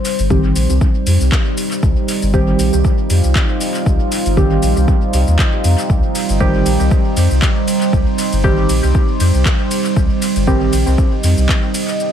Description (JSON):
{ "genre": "dub techno", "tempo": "118 BPM", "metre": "4/4", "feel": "swing 55% on 16ths", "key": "C minor", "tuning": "A4 = 440 Hz", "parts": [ { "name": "deep dark ambient pad", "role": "sustained chords", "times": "0.0-12.1 s", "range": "G3 to Eb5", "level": "-19 LUFS", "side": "right 2 dB", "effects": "chorus, built-in reverb, sidechain pumping" }, { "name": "deep house drum kit", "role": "drums", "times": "0.1-12.1 s", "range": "handclaps, hi-hat, ride cymbal, shaker", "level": "-23 LUFS", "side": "left 1 dB", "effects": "overdrive, studio reverb, dub echo" }, { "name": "warm sub bass", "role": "bass", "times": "0.2-11.5 s", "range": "G1 to F2", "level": "-15 LUFS", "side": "equal", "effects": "sidechain pumping" }, { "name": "deep mellow chord stab", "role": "stabs", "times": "0.3-10.8 s", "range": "Eb3 to G4", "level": "-20 LUFS", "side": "right 2 dB", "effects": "chorus, phaser, sidechain pumping, dub echo" }, { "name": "electronic kick drum", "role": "drums", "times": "0.3-11.6 s", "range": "none", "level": "-15 LUFS", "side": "equal", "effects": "overdrive, studio reverb" } ], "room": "light reverb, digital ambience", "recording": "none", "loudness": "-12 LUFS", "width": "side -9 dB against mid", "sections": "0.0-12.1 A section", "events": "none", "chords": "0.0 Cm", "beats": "0.30 0.81 1.32 | 1.83 2.34 2.85 3.35 | 3.86 4.37 4.88 5.39 | 5.90 6.41 6.91 7.42 | 7.93 8.44 8.95 9.46 | 9.96 10.47 10.98 11.49 | 12.00" }